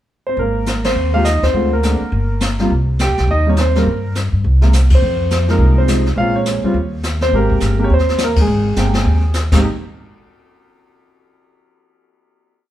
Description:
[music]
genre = jazz piano trio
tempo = 207 BPM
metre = 4/4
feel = swing 61% on 8ths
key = Ab major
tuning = A4 = 439 Hz
[part]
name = warm grand piano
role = melody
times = 0.3-9.7 s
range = C3 to G5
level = -17 LUFS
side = equal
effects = none
[part]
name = upright bass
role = bass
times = 0.4-9.6 s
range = G1 to G2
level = -15 LUFS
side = equal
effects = none
[part]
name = jazz brush drum kit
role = drums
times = 0.4-9.6 s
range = brushed snare drum, crash cymbal, hi-hat, kick drum, ride cymbal, snare drum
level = -20 LUFS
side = left 1 dB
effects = none
[sound]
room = moderate studio reverb, RT60 0.9 s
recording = band playing live in one room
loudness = -13 LUFS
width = side -12 dB against mid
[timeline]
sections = 0.0-0.4 pickup bar; 0.4-9.6 A section; 9.6-10.8 final hit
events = band accent 0.8, 4.9, 8.3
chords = 0.4 Abadd9; 1.5 Dm7b5; 2.1 Gm; 2.7 Cm7; 3.9 Gm; 4.4 N.C.; 5.0 Fm7; 6.2 Bbm9; 6.8 Cm/Eb; 7.3 Abmaj9; 9.6 N.C.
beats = 0.09 | 0.38 0.67 0.96 1.25 | 1.54 1.83 2.12 2.41 | 2.70 2.99 3.28 3.57 | 3.86 4.15 4.44 4.73 | 5.02 5.31 5.60 5.89 | 6.18 6.46 6.75 7.04 | 7.33 7.62 7.91 8.20 | 8.49 8.78 9.07 9.36 | 9.64

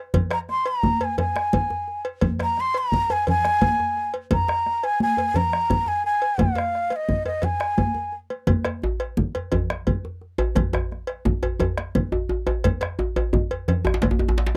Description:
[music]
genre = west african traditional, West African drum ensemble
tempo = 115 BPM (dotted quarters)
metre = 12/8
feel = straight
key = Ab major pentatonic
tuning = A4 = 440 Hz
[part]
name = bombo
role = percussion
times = 0.1-14.2 s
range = none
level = -27 LUFS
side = equal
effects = none
[part]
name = congas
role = percussion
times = 0.1-14.2 s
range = none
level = -29 LUFS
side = equal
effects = none
[part]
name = cowbell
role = percussion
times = 0.1-14.2 s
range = none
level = -32 LUFS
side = equal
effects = none
[part]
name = djembe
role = percussion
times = 0.1-14.5 s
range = none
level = -31 LUFS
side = equal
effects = none
[part]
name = breathy bansuri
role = melody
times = 0.3-8.1 s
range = Eb5 to C6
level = -24 LUFS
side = equal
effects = none
[part]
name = djembe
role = percussion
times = 8.8-14.6 s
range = none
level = -26 LUFS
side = equal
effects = none
[sound]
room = light reverb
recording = dry, close 1970s-style studio recording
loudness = -23 LUFS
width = mono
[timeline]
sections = 0.0-8.5 A section; 8.5-14.6 B section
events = none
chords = none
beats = | 0.14 0.67 1.19 1.71 | 2.23 2.75 3.27 3.79 | 4.31 4.83 5.36 5.88 | 6.40 6.92 7.44 7.96 | 8.48 9.00 9.52 10.04 | 10.56 11.08 11.60 12.12 | 12.64 13.16 13.69 14.21

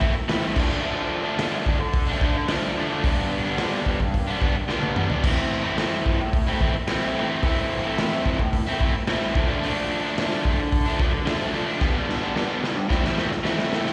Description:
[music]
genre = garage rock duo or trio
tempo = 109 BPM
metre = 4/4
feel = straight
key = A minor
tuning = A4 = 438 Hz
[part]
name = overdriven electric guitar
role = riff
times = 0.0-13.9 s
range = G2 to E4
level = -26 LUFS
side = equal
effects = slapback echo
[part]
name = raw garage drum kit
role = drums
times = 0.0-13.9 s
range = crash cymbal, hi-hat, kick drum, snare drum, splash cymbal, toms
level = -27 LUFS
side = equal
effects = none
[sound]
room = light reverb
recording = live gig heard through the venue's PA, recital hall reverb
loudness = -24 LUFS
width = mono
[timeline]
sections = 0.0-13.9 A section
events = drum fill 4.7-5.2, 11.8-13.9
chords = 0.0 Am; 0.6 Dm; 3.0 G; 5.2 Am; 9.4 Dm; 11.8 G; 12.9 Am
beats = 0.29 | 0.84 1.39 1.94 2.49 | 3.04 3.59 4.14 4.69 | 5.24 5.79 6.34 6.89 | 7.44 7.99 8.53 9.08 | 9.63 10.18 10.72 11.27 | 11.82 12.36 12.91 13.46

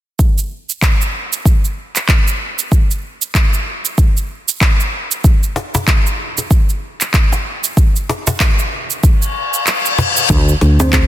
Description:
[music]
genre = organic downtempo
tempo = 95 BPM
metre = 4/4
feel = swing 59% on 16ths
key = unclear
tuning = A4 = 441 Hz
[part]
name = electronic kick drum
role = drums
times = 0.2-11.1 s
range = none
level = -12 LUFS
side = equal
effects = none
[part]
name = electronic shaker and handclaps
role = drums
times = 0.2-11.1 s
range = none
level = -18 LUFS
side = right 2 dB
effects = none
[part]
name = cajon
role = percussion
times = 5.6-10.9 s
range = none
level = -21 LUFS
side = left 2 dB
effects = none
[part]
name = reverse cymbal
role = sound effects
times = 9.3-10.3 s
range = none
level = -16 LUFS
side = left 4 dB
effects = none
[part]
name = woody fretless electric bass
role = bass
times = 10.3-11.1 s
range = D2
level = -12 LUFS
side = equal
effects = sidechain pumping
[part]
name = kalimba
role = arpeggios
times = 10.8-11.1 s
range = C4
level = -15 LUFS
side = right 1 dB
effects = none
[sound]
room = light reverb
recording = dense, heavily limited modern master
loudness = -12 LUFS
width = side -13 dB against mid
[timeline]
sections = 0.2-10.3 A section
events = reverse cymbal 9.3-10.3; kick drops out 9.7-10.3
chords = 0.2 N.C.; 10.3 D7(no3)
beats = | 0.19 0.82 1.46 2.09 | 2.72 3.35 3.98 4.61 | 5.25 5.88 6.51 7.14 | 7.77 8.40 9.04 9.67 | 10.30 10.93

